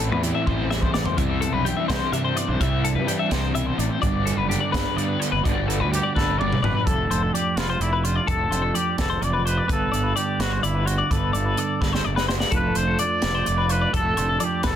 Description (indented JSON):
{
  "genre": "math rock and midwest emo",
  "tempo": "85 BPM (dotted quarters)",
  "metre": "6/8",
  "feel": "straight",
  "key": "unclear",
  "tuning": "A4 = 440 Hz",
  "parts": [
    { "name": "mellow electric guitar", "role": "accompaniment", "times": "0.0-14.8 s", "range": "D2 to A4", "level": "-28 LUFS", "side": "right 5 dB", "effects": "none" },
    { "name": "twelve-string electric guitar", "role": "arpeggios", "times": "0.0-14.8 s", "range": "G4 to E5", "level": "-27 LUFS", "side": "left 8 dB", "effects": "tremolo, plate reverb, tape echo" },
    { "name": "crunchy overdriven guitar", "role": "riff", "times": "0.0-6.8 s", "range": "G2 to E4", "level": "-28 LUFS", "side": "left 1 dB", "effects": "tremolo" },
    { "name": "fuzz fingered electric bass", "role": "bass", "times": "0.0-14.8 s", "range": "F1 to C3", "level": "-26 LUFS", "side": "equal", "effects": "overdrive" },
    { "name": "crisp fusion drum kit", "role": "drums", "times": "0.2-14.8 s", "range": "hi-hat, kick drum, snare drum, toms", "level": "-27 LUFS", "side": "equal", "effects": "none" },
    { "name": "clear trumpet", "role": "melody", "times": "5.9-14.8 s", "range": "E4 to D5", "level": "-26 LUFS", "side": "equal", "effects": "plate reverb" }
  ],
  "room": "moderate studio reverb, RT60 0.7 s",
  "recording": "dense, heavily limited modern master",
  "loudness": "-20 LUFS",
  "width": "side -10 dB against mid",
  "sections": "0.0-6.9 A section; 6.9-14.8 B section",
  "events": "drum fill 0.5-1.2, 6.1-6.9, 11.8-12.5",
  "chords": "0.0 Am9; 4.0 Gmaj7; 5.4 Gmaj9; 6.9 F6; 9.7 Gmaj7; 12.5 F6"
}